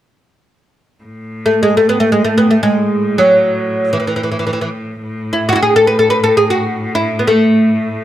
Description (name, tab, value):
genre	turkish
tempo	free time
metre	none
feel	none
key	unclear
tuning	A4 = 440 Hz
part	clear cello	drone	1.0-8.0 s	A2	-22 LUFS	left 1 dB	none
part	oud	melody	1.5-8.0 s	E3 to B4	-11 LUFS	equal	none
room	light reverb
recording	close, detailed microphones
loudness	-11 LUFS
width	side -12 dB against mid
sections	1.0-8.0 A section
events	none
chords	none